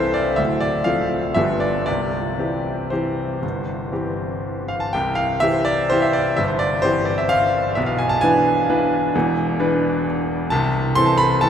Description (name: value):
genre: classical, piano waltz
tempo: 112-140 BPM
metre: 3/4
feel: rubato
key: C major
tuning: A4 = 440 Hz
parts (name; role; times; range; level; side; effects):
- bright grand piano; solo; 0.0-11.5 s; C1 to C6; -17 LUFS; equal; none
room: wet cathedral reverb, RT60 6.0 s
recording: in a vast, echoing space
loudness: -18 LUFS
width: side -8 dB against mid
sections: 0.0-4.9 A section; 4.9-11.5 B section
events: none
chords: 0.4 Dm7; 1.4 G7; 1.9 C; 7.8 E7/B; 10.5 Am/C